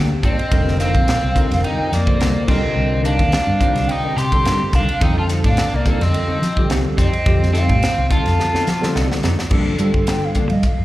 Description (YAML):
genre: electric jazz fusion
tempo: 107 BPM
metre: 4/4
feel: swing 53% on 16ths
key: unclear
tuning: A4 = 440 Hz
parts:
  - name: tine electric piano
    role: accompaniment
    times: 0.0-10.7 s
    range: D3 to C5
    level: -24 LUFS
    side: equal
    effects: medium stereo tremolo, lush chorus, slapback echo
  - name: mellow electric guitar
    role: stabs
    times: 0.0-10.8 s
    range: F3 to Bb4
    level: -28 LUFS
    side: left 1 dB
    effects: analog chorus, slapback echo
  - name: fingered electric bass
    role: bass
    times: 0.0-10.8 s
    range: F1 to G3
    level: -19 LUFS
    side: equal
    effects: none
  - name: mellow hollow silver concert flute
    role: melody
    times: 0.2-10.8 s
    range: D5 to C6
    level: -24 LUFS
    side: equal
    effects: slapback echo
  - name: crunchy overdriven guitar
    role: second line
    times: 0.2-8.9 s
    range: Bb3 to G4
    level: -24 LUFS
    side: equal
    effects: slapback echo
  - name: crisp fusion drum kit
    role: drums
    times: 0.2-10.8 s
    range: crash cymbal, hi-hat, kick drum, ride cymbal, snare drum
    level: -20 LUFS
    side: equal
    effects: none
room: studio reverb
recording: live gig heard through the venue's PA, club reverb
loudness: -15 LUFS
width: side -16 dB against mid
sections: 0.0-9.5 A section; 9.5-10.8 B section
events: drum fill 8.4-9.5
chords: 0.0 Gm9; 0.5 F9sus4; 2.5 Cm9; 5.0 F7; 9.5 Gm9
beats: | 0.51 1.07 1.64 2.20 | 2.76 3.32 3.88 4.45 | 5.01 5.57 6.13 6.70 | 7.26 7.82 8.38 8.95 | 9.51 10.07 10.63